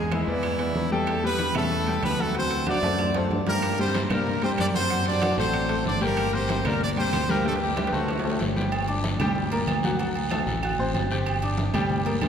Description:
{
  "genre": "latin, salsa",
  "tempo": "188 BPM",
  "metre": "4/4",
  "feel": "straight",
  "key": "G minor",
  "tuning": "A4 = 440 Hz",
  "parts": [
    { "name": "brilliant horn section", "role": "melody", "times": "0.0-8.4 s", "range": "E3 to D5", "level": "-27 LUFS", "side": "equal", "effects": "none" },
    { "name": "clear grand piano", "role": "accompaniment", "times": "0.0-12.3 s", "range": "F#3 to G6", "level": "-28 LUFS", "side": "left 1 dB", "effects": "none" },
    { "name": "fingered electric bass", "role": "bass", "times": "0.0-12.3 s", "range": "G1 to G2", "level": "-28 LUFS", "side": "equal", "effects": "none" },
    { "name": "claves", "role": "percussion", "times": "0.1-12.3 s", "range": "none", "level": "-40 LUFS", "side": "right 4 dB", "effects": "none" },
    { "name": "congas", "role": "percussion", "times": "0.1-12.3 s", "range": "none", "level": "-32 LUFS", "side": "right 1 dB", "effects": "none" },
    { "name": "timbales and agogo bells", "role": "percussion", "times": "0.1-12.3 s", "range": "none", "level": "-33 LUFS", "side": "right 3 dB", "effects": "none" },
    { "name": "guiro", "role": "percussion", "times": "3.6-12.3 s", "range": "none", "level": "-39 LUFS", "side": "left 4 dB", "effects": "none" }
  ],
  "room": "wet cathedral reverb, RT60 4.5 s",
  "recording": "recorded in a church or concert hall",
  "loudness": "-22 LUFS",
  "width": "side -8 dB against mid",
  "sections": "0.0-8.7 A section; 8.7-12.3 B section",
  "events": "drum fill 2.7-3.6, 7.5-8.7",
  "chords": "0.0 E7; 1.1 A7/E; 2.3 D7; 3.6 Gm; 4.9 D7; 6.2 Gm; 7.5 D7sus4; 8.1 D7; 8.7 Gm; 10.0 D7; 11.3 Gm",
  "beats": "0.12 0.44 0.76 | 1.07 1.39 1.71 2.03 | 2.35 2.67 2.99 3.31 | 3.62 3.94 4.26 4.58 | 4.90 5.22 5.54 5.86 | 6.18 6.50 6.81 7.13 | 7.45 7.77 8.09 8.41 | 8.72 9.04 9.36 9.68 | 10.00 10.31 10.63 10.95 | 11.27 11.58 11.90 12.22"
}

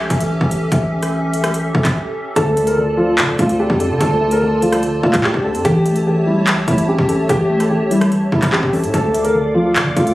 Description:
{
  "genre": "hip hop, drill",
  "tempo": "146 BPM",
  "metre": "4/4",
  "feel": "half-time",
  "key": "D harmonic minor",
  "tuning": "A4 = 440 Hz",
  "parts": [
    { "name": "hollow soft pad", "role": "sustained chords", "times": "0.0-10.1 s", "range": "C#4 to D6", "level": "-24 LUFS", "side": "equal", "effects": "ensemble chorus" },
    { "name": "distorted 808-style bass", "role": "bass", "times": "0.0-10.1 s", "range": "A1 to D3", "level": "-21 LUFS", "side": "equal", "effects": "distortion" },
    { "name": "drill drum kit", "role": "drums", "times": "0.1-10.1 s", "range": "handclaps, hi-hat, kick drum, rim click", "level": "-19 LUFS", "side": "equal", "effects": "overdrive" },
    { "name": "dark concert grand piano", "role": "melody", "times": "2.4-10.1 s", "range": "E4 to Bb4", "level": "-17 LUFS", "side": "equal", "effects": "none" },
    { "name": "soft round pluck", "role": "accompaniment", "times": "2.4-10.1 s", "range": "D3 to D4", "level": "-20 LUFS", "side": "equal", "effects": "chorus" }
  ],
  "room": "light reverb",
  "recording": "recorded on a phone in the room, studio reverb, compression",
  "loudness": "-14 LUFS",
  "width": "side -16 dB against mid",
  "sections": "0.0-2.4 A section; 2.4-10.1 B section",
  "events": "break 2.0-2.4",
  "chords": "0.0 A7; 2.4 Dm; 5.7 A7; 8.9 Dm",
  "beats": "0.31 | 0.72 1.13 1.54 1.95 | 2.36 2.77 3.18 3.60 | 4.01 4.42 4.83 5.24 | 5.65 6.06 6.47 6.88 | 7.29 7.71 8.12 8.53 | 8.94 9.35 9.76"
}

